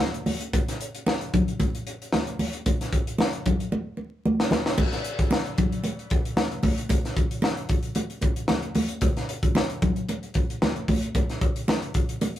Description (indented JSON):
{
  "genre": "funk",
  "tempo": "113 BPM",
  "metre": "4/4",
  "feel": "straight",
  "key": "none",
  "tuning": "none",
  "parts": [
    { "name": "congas", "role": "percussion", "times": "0.0-12.3 s", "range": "none", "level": "-26 LUFS", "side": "equal", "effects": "none" },
    { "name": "crisp fusion drum kit", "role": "drums", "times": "0.1-12.4 s", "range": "crash cymbal, hi-hat, kick drum, snare drum", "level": "-25 LUFS", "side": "equal", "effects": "none" }
  ],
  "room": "light reverb",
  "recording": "rough rehearsal-room recording, vinyl crackle",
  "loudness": "-23 LUFS",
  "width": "side -12 dB against mid",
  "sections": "0.0-4.8 A section; 4.8-12.4 B section",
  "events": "drum fill 3.7-4.8",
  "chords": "none",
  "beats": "0.00 | 0.53 1.06 1.60 2.13 | 2.66 3.19 3.72 4.25 | 4.78 5.31 5.84 6.37 | 6.90 7.43 7.96 8.49 | 9.02 9.55 10.08 10.61 | 11.14 11.67 12.21"
}